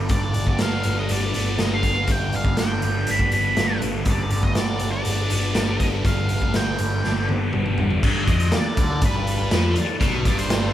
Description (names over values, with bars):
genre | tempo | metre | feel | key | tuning
psychedelic rock | 121 BPM | 4/4 | straight | G major | A4 = 440 Hz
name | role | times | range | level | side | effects
musette accordion | sustained chords | 0.0-10.7 s | G3 to D5 | -36 LUFS | right 3 dB | none
thick fuzz guitar | riff | 0.0-10.7 s | G2 to D4 | -26 LUFS | left 2 dB | distortion, phaser
picked electric bass | bass | 0.0-10.7 s | G1 to F2 | -25 LUFS | equal | none
octave-fuzz lead guitar | melody | 0.1-10.7 s | B4 to B5 | -27 LUFS | equal | distortion
raw garage drum kit | drums | 0.1-10.6 s | crash cymbal, hi-hat, kick drum, snare drum, toms | -23 LUFS | equal | none
tanpura | drone | 8.1-10.7 s | G2 to G3 | -36 LUFS | left 1 dB | none
room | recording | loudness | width
light reverb | band playing live in one room | -19 LUFS | side -12 dB against mid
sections
0.0-8.0 A section; 8.0-10.7 B section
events
drum fill 7.0-8.0; lead electric guitar solo 8.0-10.7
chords
0.0 G